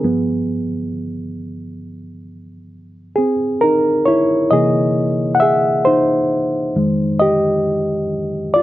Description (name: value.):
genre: R&B.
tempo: 67 BPM.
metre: 4/4.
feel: swing 62% on 16ths.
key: unclear.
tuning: A4 = 438 Hz.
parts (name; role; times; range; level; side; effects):
reed electric piano; solo; 0.0-8.6 s; F2 to F#5; -15 LUFS; equal; none.
room: little or no reverb.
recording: none.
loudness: -14 LUFS.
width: side -15 dB against mid.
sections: 0.0-8.6 A section.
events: reed electric piano solo 0.0-8.6.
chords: 0.0 G7b9; 3.2 C7alt; 6.8 Fm9.